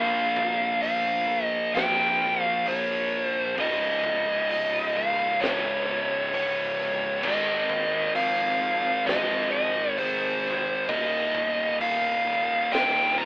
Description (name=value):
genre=stoner and doom metal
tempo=66 BPM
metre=4/4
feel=straight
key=unclear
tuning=A4 = 440 Hz
part: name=fuzz lead guitar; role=melody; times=0.0-13.3 s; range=C5 to Bb5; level=-24 LUFS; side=equal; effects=distortion
part: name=biting overdriven guitar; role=riff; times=0.0-13.3 s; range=Db2 to Bb3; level=-34 LUFS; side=equal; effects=none
part: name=thick fuzz guitar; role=riff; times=0.0-13.3 s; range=Db2 to Bb3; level=-34 LUFS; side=left 1 dB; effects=distortion
part: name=thick fuzz guitar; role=riff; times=0.0-13.3 s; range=Db2 to Bb3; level=-30 LUFS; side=right 1 dB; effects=distortion
part: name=growling fingered electric bass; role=bass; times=0.0-13.3 s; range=C1 to F2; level=-39 LUFS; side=equal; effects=overdrive
part: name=oversized low-tuned drum kit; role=drums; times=0.4-12.9 s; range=crash cymbal, hi-hat, kick drum, snare drum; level=-34 LUFS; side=equal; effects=none
room=light reverb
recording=band playing live in one room, telephone sound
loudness=-22 LUFS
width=side -25 dB against mid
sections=0.0-13.3 A section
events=none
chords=0.0 Bbm; 3.6 Db; 7.2 Ab; 10.9 Eb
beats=0.82 1.74 2.66 | 3.58 4.49 5.41 6.32 | 7.24 8.15 9.07 9.98 | 10.89 11.80 12.72